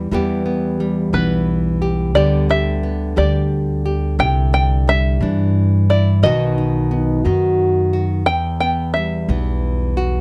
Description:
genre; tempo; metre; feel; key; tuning
acoustic folk duo or small band; 59 BPM (dotted quarters); 6/8; straight; E minor; A4 = 440 Hz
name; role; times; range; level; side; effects
dark French horn; second line; 0.0-0.1, 6.9-8.1 s; D#4 to G4; -20 LUFS; equal; none
nylon-string guitar; accompaniment; 0.0-10.2 s; E2 to G4; -22 LUFS; equal; none
upright bass; bass; 0.0-10.2 s; B1 to G2; -21 LUFS; equal; none
open-back banjo; melody; 1.1-9.9 s; B4 to G5; -22 LUFS; equal; none
room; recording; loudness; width
little or no reverb; dark, warm production; -17 LUFS; mono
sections
0.1-10.2 A section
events
none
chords
0.1 Em; 2.2 G/D; 4.2 Cadd9; 6.2 B; 8.3 Emadd9

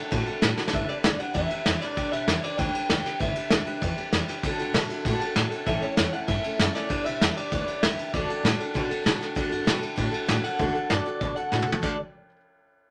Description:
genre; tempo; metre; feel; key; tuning
rockabilly; 195 BPM; 4/4; straight; D major; A4 = 440 Hz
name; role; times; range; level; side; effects
picked steel-string acoustic guitar; accompaniment; 0.0-12.0 s; A2 to B4; -33 LUFS; equal; none
upright bass; bass; 0.1-12.0 s; G1 to B2; -34 LUFS; equal; none
vintage brush drum kit; drums; 0.1-11.9 s; crash cymbal, hi-hat, kick drum, ride cymbal, snare drum, toms; -28 LUFS; equal; none
electric guitar through a small old amp; melody; 0.7-12.0 s; C#5 to G5; -34 LUFS; equal; tremolo
room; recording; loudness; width
light reverb; none; -26 LUFS; mono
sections
0.0-10.6 A section; 10.6-11.8 B section; 11.8-12.9 C section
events
drum fill 0.6, 11.5-11.8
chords
0.0 D; 0.7 G; 4.4 D; 5.7 A; 6.9 G; 8.1 D

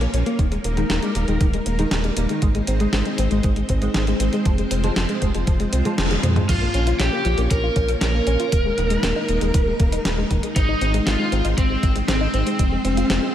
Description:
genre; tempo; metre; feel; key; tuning
synthwave; 118 BPM; 4/4; straight; unclear; A4 = 439 Hz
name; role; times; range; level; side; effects
string machine, full ensemble; sustained chords; 0.0-13.3 s; Ab3 to Db5; -28 LUFS; equal; ensemble chorus, sidechain pumping
soft round pluck; arpeggios; 0.0-13.3 s; Eb3 to F4; -27 LUFS; left 3 dB; chorus, tape echo, slapback echo
mellow electric guitar; riff; 0.0-6.5 s; Eb3 to Db4; -29 LUFS; right 4 dB; wide subtle chorus, low-pass filter, tape echo
round analog bass; bass; 0.0-13.2 s; Eb1 to F2; -22 LUFS; equal; sidechain pumping
clean 12-bit digital drum machine; drums; 0.0-13.2 s; crash cymbal, hi-hat, snare drum, toms; -26 LUFS; equal; none
electronic kick drum; drums; 0.4-12.7 s; none; -21 LUFS; equal; overdrive
lead guitar through a small cranked amp; melody; 6.5-13.3 s; C4 to Bb4; -23 LUFS; equal; overdrive, tape echo
room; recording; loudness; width
light reverb; none; -18 LUFS; side -11 dB against mid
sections
0.0-6.5 A section; 6.5-13.3 B section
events
band accent 6.0; drum fill 6.1-6.5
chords
0.4 Ebsus4; 2.4 Ab; 4.5 Fm; 6.5 Bbm; 8.5 Ebsus4; 10.6 Ab; 12.6 Fm

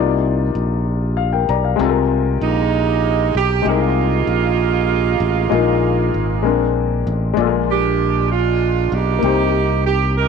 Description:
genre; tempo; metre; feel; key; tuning
slow gospel; 65 BPM (dotted quarters); 6/8; straight; unclear; A4 = 445 Hz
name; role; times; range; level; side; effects
warm baby grand piano; accompaniment; 0.0-10.3 s; Bb2 to Bb5; -20 LUFS; left 13 dB; none
modern bright fingered electric bass; bass; 0.0-10.3 s; Ab1 to C2; -19 LUFS; equal; none
clear saxophone section; melody; 2.4-10.3 s; Ab3 to Bb4; -18 LUFS; right 12 dB; none
room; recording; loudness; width
light reverb, small room ambience; 1960s-style stereo with parts hard left and right, nothing above 10.5 kHz; -15 LUFS; side -6 dB against mid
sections
0.0-7.4 A section; 7.4-10.3 B section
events
none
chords
0.0 Cm11; 1.8 Ab69; 3.7 Fm11; 5.5 Bb7sus4; 6.4 Bb9; 7.4 Bb7; 9.2 Cm7

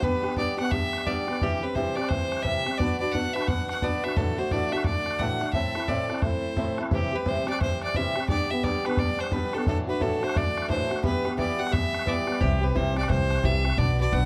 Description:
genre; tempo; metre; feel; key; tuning
celtic folk, Celtic hornpipe; 174 BPM; 4/4; swing 62% on 8ths; unclear; A4 = 443 Hz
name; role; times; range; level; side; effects
bright fiddle; melody; 0.0-14.3 s; G4 to F#5; -32 LUFS; equal; none
picked swing-style acoustic guitar; accompaniment; 0.0-14.3 s; A2 to B4; -31 LUFS; equal; none
bodhran; percussion; 0.0-14.2 s; none; -32 LUFS; equal; none
upright bass; bass; 12.4-14.3 s; B1 to C2; -26 LUFS; equal; none
room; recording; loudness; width
little or no reverb; dry, close 1970s-style studio recording; -26 LUFS; mono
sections
0.0-6.9 A section; 6.9-14.3 A section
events
none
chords
0.0 G; 1.4 C; 2.8 Bm; 4.2 Dadd9/A; 5.5 Am; 6.9 C; 8.3 G; 9.7 Dadd9/A; 11.0 Em; 12.4 C

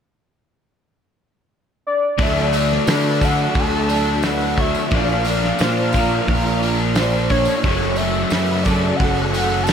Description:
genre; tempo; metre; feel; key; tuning
rock, shoegaze and dream pop; 88 BPM; 4/4; straight; unclear; A4 = 436 Hz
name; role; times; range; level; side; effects
warm velvety synth lead; melody; 1.9-9.7 s; C#5 to A5; -24 LUFS; equal; chorus, analog delay
string machine, violins; sustained chords; 2.2-9.7 s; C#3 to F#5; -28 LUFS; right 1 dB; ensemble chorus
electric guitar through a small old amp; arpeggios; 2.2-9.7 s; D4 to D5; -28 LUFS; left 1 dB; ensemble chorus, analog delay
biting overdriven guitar; riff; 2.2-9.7 s; F#2 to D4; -24 LUFS; left 13 dB; analog chorus
crunchy overdriven guitar; riff; 2.2-9.7 s; F#2 to D4; -25 LUFS; equal; none
overdriven semi-hollow guitar; riff; 2.2-9.7 s; F#2 to D4; -26 LUFS; right 10 dB; reverse reverb
growling fingered electric bass; bass; 2.2-9.7 s; F#1 to D3; -22 LUFS; equal; overdrive
loose indie drum kit; drums; 2.2-9.7 s; hi-hat, kick drum, snare drum; -23 LUFS; equal; none
tambourine; percussion; 2.2-9.7 s; none; -38 LUFS; right 15 dB; none
room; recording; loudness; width
small room ambience; none; -16 LUFS; side -7 dB against mid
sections
0.0-2.2 A section; 2.2-9.7 B section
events
none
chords
0.0 N.C.; 2.2 Dadd9; 4.9 Bb; 7.6 F#m

